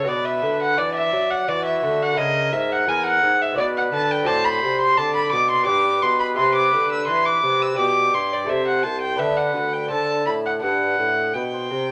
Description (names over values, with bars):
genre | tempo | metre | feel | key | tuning
classical, baroque-style sonata movement with continuo | 85 BPM | 3/4 | straight | G major from 4.3 s | A4 = 440 Hz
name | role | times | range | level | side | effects
bright trumpet | melody | 0.0-11.9 s | F#4 to D5 | -30 LUFS | equal | none
rich violin | second line | 0.0-11.9 s | D5 to E6 | -22 LUFS | equal | none
lute | accompaniment | 0.0-11.9 s | D2 to E5 | -31 LUFS | equal | none
dark bassoon | bass | 0.0-11.9 s | C2 to F#3 | -28 LUFS | equal | none
room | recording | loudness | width
moderate large studio reverb, RT60 1.2 s | none | -20 LUFS | mono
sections
0.0-11.9 A section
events
none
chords
0.1 Bm; 2.2 A#dim; 3.6 Bm; 4.3 D7/A; 5.7 G; 6.4 C; 7.8 G/B; 8.5 Am/C; 9.2 D69; 9.9 D5; 10.6 G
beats
| 0.07 0.78 1.48 | 2.18 2.88 3.57 | 4.27 4.97 5.67 | 6.37 7.08 7.78 | 8.48 9.19 9.90 | 10.62 11.35